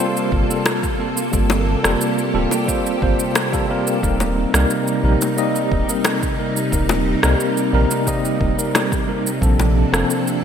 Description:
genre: sunset chillout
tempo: 89 BPM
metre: 4/4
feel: straight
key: unclear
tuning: A4 = 440 Hz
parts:
  - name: tine electric piano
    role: accompaniment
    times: 0.0-10.4 s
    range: F3 to Eb5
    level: -21 LUFS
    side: equal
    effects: fast stereo tremolo, auto-pan, digital delay
  - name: soft string machine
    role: sustained chords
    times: 0.0-10.4 s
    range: C3 to A4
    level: -23 LUFS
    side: left 1 dB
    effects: ensemble chorus
  - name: electronic cabasa and rim click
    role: drums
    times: 0.2-10.4 s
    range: none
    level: -24 LUFS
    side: right 1 dB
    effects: gated reverb
  - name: warm sub bass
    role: bass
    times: 0.3-10.0 s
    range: D1 to C2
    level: -19 LUFS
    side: equal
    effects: none
  - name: electronic kick drum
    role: drums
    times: 0.3-9.6 s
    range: none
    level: -24 LUFS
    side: equal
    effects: none
  - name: bongos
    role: percussion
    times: 0.7-9.7 s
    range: none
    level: -27 LUFS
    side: left 5 dB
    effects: none
room: moderate lush hall reverb, RT60 2.8 s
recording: bright 1980s-style digital production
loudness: -16 LUFS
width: side -8 dB against mid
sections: 0.0-10.4 A section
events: none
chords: 0.0 Gm11; 4.0 Eb6; 9.4 Bbmaj9

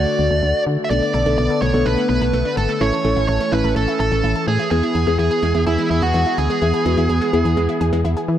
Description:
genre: synth-pop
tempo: 126 BPM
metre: 4/4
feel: straight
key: unclear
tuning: A4 = 440 Hz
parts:
  - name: dark smooth lead guitar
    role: melody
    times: 0.0-8.0 s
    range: E4 to E5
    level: -21 LUFS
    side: right 2 dB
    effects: overdrive, tape echo
  - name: muted felt-like synth keys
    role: accompaniment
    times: 0.0-8.0 s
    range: A3 to A4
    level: -23 LUFS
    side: left 1 dB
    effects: chorus
  - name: warm analog pad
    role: sustained chords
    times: 0.0-8.4 s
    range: D3 to G#4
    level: -24 LUFS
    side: left 2 dB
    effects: chorus, tremolo
  - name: solid FM bass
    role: bass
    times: 0.0-8.4 s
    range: G#1 to E3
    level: -20 LUFS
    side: equal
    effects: none
  - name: analog pluck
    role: arpeggios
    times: 0.9-8.3 s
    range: G#3 to A4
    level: -28 LUFS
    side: left 2 dB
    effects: chorus, tape echo
room: light reverb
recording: dark, warm production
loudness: -16 LUFS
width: side -10 dB against mid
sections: 0.0-8.4 A section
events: none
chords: 0.0 D; 0.9 Bm7; 2.8 A; 4.7 E

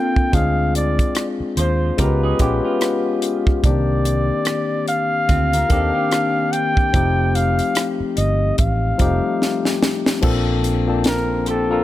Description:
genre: lush 1970s-style soul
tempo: 73 BPM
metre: 4/4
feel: swing 58% on 16ths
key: Bb major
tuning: A4 = 440 Hz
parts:
  - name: mellow flugelhorn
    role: melody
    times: 0.0-11.8 s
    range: A4 to G5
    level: -22 LUFS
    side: equal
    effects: none
  - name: barky tine electric piano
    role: accompaniment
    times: 0.0-11.8 s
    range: D3 to A5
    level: -21 LUFS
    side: left 4 dB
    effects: none
  - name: electric guitar through a small old amp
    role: riff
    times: 0.0-11.8 s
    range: Cb4 to C5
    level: -27 LUFS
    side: right 3 dB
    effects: none
  - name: tight funk drum kit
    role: drums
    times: 0.2-11.7 s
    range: crash cymbal, hi-hat, kick drum, rim click, snare drum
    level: -20 LUFS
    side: right 1 dB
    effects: none
  - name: vintage muted fingered electric bass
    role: bass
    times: 0.3-11.8 s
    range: F1 to Eb2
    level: -20 LUFS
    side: right 1 dB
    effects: none
room: small room ambience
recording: none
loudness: -16 LUFS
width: side -14 dB against mid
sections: 0.0-10.2 A section; 10.2-11.8 B section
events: drum fill 9.4-10.2; flugelhorn solo 10.2-11.8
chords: 0.3 Dm7b5; 2.0 Db7#11; 3.6 Cm9; 6.9 F7; 10.2 Bbmaj7

